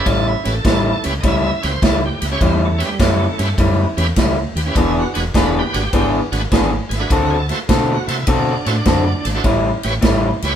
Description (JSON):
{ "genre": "electric blues shuffle", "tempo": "102 BPM", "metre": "4/4", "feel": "swing 67% on 8ths", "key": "A mixolydian", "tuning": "A4 = 440 Hz", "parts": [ { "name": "bright tonewheel organ", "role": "accompaniment", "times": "0.0-10.5 s", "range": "G3 to E5", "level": "-23 LUFS", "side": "right 3 dB", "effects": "slow rotary speaker, overdrive" }, { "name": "electric guitar through a small old amp", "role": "riff", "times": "0.1-10.3 s", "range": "A2 to A4", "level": "-18 LUFS", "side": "left 2 dB", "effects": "none" }, { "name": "fingered electric bass", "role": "bass", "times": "0.1-10.6 s", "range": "E1 to C3", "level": "-21 LUFS", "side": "equal", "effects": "none" }, { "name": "natural country drum kit", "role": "drums", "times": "0.1-10.5 s", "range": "kick drum, ride cymbal, snare drum", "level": "-20 LUFS", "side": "right 1 dB", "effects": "none" } ], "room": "moderate studio reverb, RT60 0.8 s", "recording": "band playing live in one room", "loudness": "-14 LUFS", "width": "side -9 dB against mid", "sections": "0.0-10.6 A section", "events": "none", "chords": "0.0 A7; 4.8 E7; 7.1 D7; 9.4 A7" }